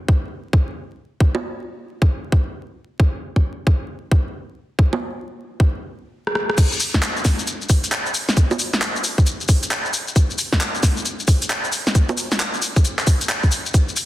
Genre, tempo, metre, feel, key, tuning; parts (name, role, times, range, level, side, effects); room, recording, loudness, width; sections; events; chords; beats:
UK garage; 134 BPM; 4/4; swing 63% on 16ths
electronic kick drum; drums; 0.1-13.9 s; -17 LUFS; equal
garage drum kit; drums; 1.3-1.4, 4.9-14.1 s; bongos, crash cymbal, handclaps, hi-hat, rim click, shaker, snare drum; -21 LUFS; equal
little or no reverb; dense, heavily limited modern master, vinyl crackle; -17 LUFS; side -15 dB against mid
0.0-6.6 A section; 6.6-14.1 B section
stop 5.7-6.6; drum fill 6.2-6.6; drop 6.6-14.1
0.31 0.76 | 1.20 1.65 2.10 2.55 | 3.00 3.44 3.89 4.34 | 4.79 5.23 5.68 6.13 | 6.58 7.03 7.47 7.92 | 8.37 8.82 9.26 9.71 | 10.16 10.61 11.05 11.50 | 11.95 12.40 12.85 13.29 | 13.74